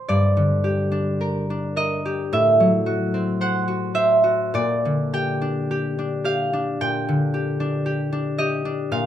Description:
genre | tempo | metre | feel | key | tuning
classical, solo harp piece | 49-58 BPM | 4/4 | rubato | G minor | A4 = 440 Hz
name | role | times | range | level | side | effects
concert harp | solo | 0.0-9.1 s | G2 to G5 | -19 LUFS | equal | none
room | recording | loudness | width
light reverb | close, detailed microphones | -19 LUFS | side -10 dB against mid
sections
0.1-9.1 A section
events
none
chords
0.1 Gm; 2.3 F#dim/A; 4.5 Gm/Bb

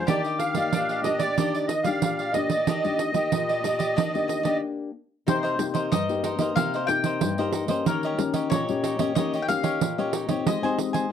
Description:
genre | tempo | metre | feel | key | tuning
samba and choro | 92 BPM | 4/4 | straight | Eb major | A4 = 440 Hz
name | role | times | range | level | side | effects
musette accordion | melody | 0.0-4.6 s | D5 to F5 | -25 LUFS | right 2 dB | none
mandolin | second line | 0.0-11.1 s | D4 to G5 | -30 LUFS | left 4 dB | none
cavaquinho | accompaniment | 0.0-11.1 s | D4 to Ab5 | -31 LUFS | right 1 dB | none
nylon-string guitar | accompaniment | 0.0-11.1 s | G2 to G4 | -28 LUFS | left 6 dB | none
pandeiro | percussion | 0.1-11.1 s | none | -28 LUFS | right 8 dB | none
room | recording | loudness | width
moderate studio reverb, RT60 0.6 s | dry, close 1970s-style studio recording | -22 LUFS | side -8 dB against mid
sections
0.0-5.3 A section; 5.3-11.1 B section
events
stop 4.6-5.3; mandolin solo 5.3-11.1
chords
0.1 Ebmaj7; 5.3 Cm7; 7.9 Eb7; 10.5 Abmaj7

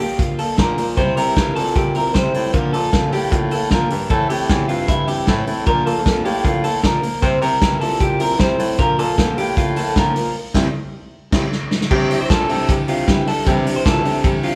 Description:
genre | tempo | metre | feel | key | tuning
jangly indie pop | 154 BPM | 4/4 | straight | unclear | A4 = 440 Hz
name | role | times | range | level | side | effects
picked steel-string acoustic guitar | accompaniment | 0.0-14.6 s | A2 to F4 | -27 LUFS | equal | none
electric guitar through a small old amp | arpeggios | 0.0-14.6 s | E4 to C5 | -23 LUFS | equal | none
vintage drum kit | drums | 0.2-14.5 s | crash cymbal, hi-hat, kick drum, ride cymbal, snare drum | -21 LUFS | equal | none
warm baritone saxophone | bass | 0.6-14.6 s | C2 to C3 | -26 LUFS | equal | none
room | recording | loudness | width
moderate large studio reverb, RT60 1.4 s | band playing live in one room | -18 LUFS | mono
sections
0.0-11.9 A section; 11.9-14.6 B section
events
band accent 10.3-11.9; drum fill 11.5-11.9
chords
0.0 Bb; 1.0 C; 2.5 Bb; 4.1 Am; 5.7 Bb; 7.2 C; 8.8 Bb; 10.3 C; 11.9 Cadd9

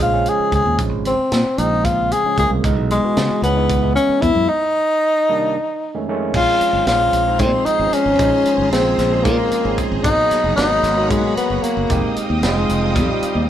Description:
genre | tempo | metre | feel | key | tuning
electric jazz fusion | 227 BPM (eighths) | 7/8 | straight | Bb minor from 6.3 s | A4 = 440 Hz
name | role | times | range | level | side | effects
breathy tenor saxophone | melody | 0.0-13.5 s | G3 to Ab4 | -17 LUFS | left 2 dB | none
overdriven tine electric piano | accompaniment | 0.0-13.5 s | C2 to C5 | -23 LUFS | right 4 dB | none
modern bright fingered electric bass | bass | 0.0-13.5 s | F1 to Db3 | -21 LUFS | equal | none
tight funk drum kit | drums | 0.3-13.4 s | crash cymbal, hi-hat, kick drum, snare drum | -24 LUFS | equal | none
string machine, violas | sustained chords | 6.3-13.5 s | Ab4 to Eb6 | -27 LUFS | equal | ensemble chorus
room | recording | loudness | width
moderate studio reverb, RT60 0.9 s | band playing live in one room | -15 LUFS | side -10 dB against mid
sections
0.0-6.3 A section; 6.3-13.5 B section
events
break 4.5-6.3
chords
0.0 Bbm9; 2.6 Dbm9; 4.5 Cm9; 5.6 F7alt; 6.3 Bbm9; 10.1 Abm9; 11.9 Fm9

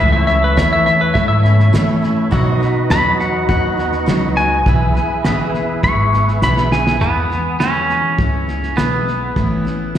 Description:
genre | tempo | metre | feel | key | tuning
honky-tonk and classic country | 103 BPM | 4/4 | straight | E major | A4 = 440 Hz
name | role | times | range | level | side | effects
pedal steel guitar | melody | 0.0-7.0 s | B4 to C#6 | -18 LUFS | left 1 dB | slapback echo, tape echo
percussive tonewheel organ | accompaniment | 0.0-7.0 s | D#4 to E5 | -23 LUFS | right 6 dB | chorus vibrato, slapback echo
picked steel-string acoustic guitar | accompaniment | 0.0-10.0 s | E2 to G#4 | -22 LUFS | left 4 dB | none
pedal steel guitar | sustained chords | 0.0-7.0 s | F#4 to E5 | -28 LUFS | left 1 dB | lush chorus
upright bass | bass | 0.0-10.0 s | G#1 to B2 | -18 LUFS | equal | none
cloth-damped thuddy drum kit | drums | 0.3-10.0 s | hi-hat, kick drum, snare drum | -21 LUFS | equal | none
twangy electric guitar | second line | 7.0-10.0 s | B3 to C#4 | -19 LUFS | right 3 dB | slapback echo, tape echo
room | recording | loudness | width
light reverb, small room ambience | live gig heard through the venue's PA, recital hall reverb | -13 LUFS | side -10 dB against mid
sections
0.0-7.0 A section; 7.0-10.0 B section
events
pedal steel guitar solo 0.0-7.0; drum fill 6.4-7.0; clean electric guitar solo 7.0-10.0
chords
0.0 A; 2.3 B; 4.7 E; 9.4 A

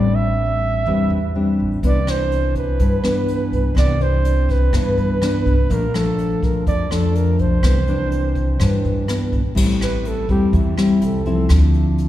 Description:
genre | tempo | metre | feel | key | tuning
bossa nova | 124 BPM | 4/4 | straight | C major | A4 = 440 Hz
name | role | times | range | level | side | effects
mellow flugelhorn | melody | 0.0-11.5 s | E4 to E5 | -24 LUFS | right 4 dB | none
nylon-string guitar | accompaniment | 0.0-12.1 s | F2 to E4 | -20 LUFS | left 2 dB | none
upright bass | bass | 0.0-12.1 s | A1 to G2 | -19 LUFS | equal | none
jazz brush drum kit | drums | 1.8-12.1 s | crash cymbal, hi-hat, kick drum, rim click | -23 LUFS | equal | none
room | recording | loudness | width
wet concert hall reverb, RT60 2.3 s | recorded in a church or concert hall | -16 LUFS | side -13 dB against mid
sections
0.0-9.6 A section; 9.6-12.1 B section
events
flugelhorn solo 9.6-12.1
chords
0.0 Am11; 1.8 Cmaj9; 5.7 Bbmaj7; 7.6 Cmaj9; 9.6 Am7; 11.5 Dm9

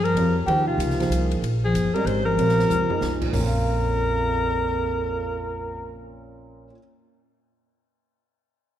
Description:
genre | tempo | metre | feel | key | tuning
modal jazz | 189 BPM | 3/4 | swing 63% on 8ths | Bb dorian | A4 = 435 Hz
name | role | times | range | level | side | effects
breathy alto saxophone | melody | 0.0-6.0 s | F4 to C5 | -24 LUFS | equal | none
dark bass clarinet | second line | 0.0-6.0 s | F2 to Ab3 | -27 LUFS | left 2 dB | none
upright bass | bass | 0.0-6.7 s | G1 to G2 | -27 LUFS | equal | none
open jazz drum kit | drums | 0.1-3.4 s | crash cymbal, hi-hat, kick drum, ride cymbal, snare drum, toms | -33 LUFS | equal | none
dark grand piano | accompaniment | 0.2-6.8 s | Bb2 to F5 | -30 LUFS | right 3 dB | analog chorus
room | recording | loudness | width
moderate lush hall reverb, RT60 1.9 s, studio reverb | dreamy mix soaked in reverb | -20 LUFS | side -11 dB against mid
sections
0.0-3.3 A section; 3.3-5.2 B section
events
drum fill 2.7-3.0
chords
0.0 Bb9sus4; 3.3 Bbm

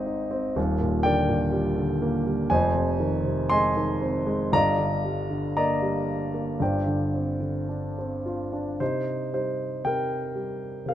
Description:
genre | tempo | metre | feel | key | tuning
classical, lyrical solo piano | 52-62 BPM | 4/4 | rubato | C minor | A4 = 440 Hz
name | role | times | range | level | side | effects
dark grand piano | solo | 0.0-10.9 s | Eb1 to C6 | -23 LUFS | equal | none
room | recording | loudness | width
light reverb | close, detailed microphones | -23 LUFS | side -11 dB against mid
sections
0.0-8.8 A section; 8.8-10.9 B section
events
none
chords
0.0 Abmaj7; 0.6 Ebmaj7; 2.5 Fm7; 4.5 Ebmaj7/G; 6.6 G7sus4; 8.8 Cm7

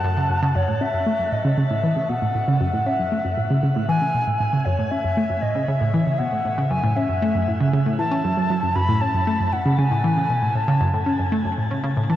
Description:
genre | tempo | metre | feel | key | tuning
ambient | 117 BPM | 4/4 | straight | F# dorian | A4 = 441 Hz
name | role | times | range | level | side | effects
mellow concert flute | melody | 0.0-12.2 s | C#5 to B5 | -24 LUFS | left 1 dB | ping-pong delay
analog pluck | riff | 0.0-12.2 s | F#2 to C#4 | -20 LUFS | equal | chorus, ping-pong delay
room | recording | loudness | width
wet shimmer reverb, RT60 7.7 s | worn, warbling old tape, cassette tape, warbly pitch drift | -19 LUFS | side -12 dB against mid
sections
0.6-12.2 A section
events
none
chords
0.0 F#m7

